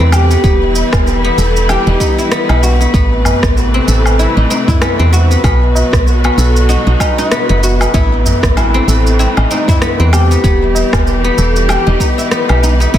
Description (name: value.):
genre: organic downtempo.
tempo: 96 BPM.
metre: 4/4.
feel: swing 57% on 16ths.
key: unclear.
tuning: A4 = 436 Hz.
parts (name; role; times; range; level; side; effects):
oud; melody; 0.0-13.0 s; C4 to G4; -19 LUFS; equal; digital delay.
bright symphonic string section; sustained chords; 0.0-13.0 s; B2 to B4; -20 LUFS; equal; sidechain pumping.
guzheng; arpeggios; 0.0-13.0 s; B3 to A4; -17 LUFS; left 2 dB; ping-pong delay.
woody FM bass; bass; 0.0-13.0 s; E1 to E2; -12 LUFS; equal; sidechain pumping.
electronic woodblock, cabasa and rim click; drums; 0.1-13.0 s; none; -19 LUFS; left 1 dB; none.
electronic kick drum; drums; 0.4-13.0 s; none; -14 LUFS; equal; none.
tabla; percussion; 0.6-12.9 s; none; -23 LUFS; left 1 dB; none.
room: light reverb.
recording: dense, heavily limited modern master.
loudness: -9 LUFS.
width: side -11 dB against mid.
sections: 0.0-13.0 A section.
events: none.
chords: 0.4 Em; 2.9 Amadd9; 5.4 B; 7.9 Amadd9; 10.4 Em.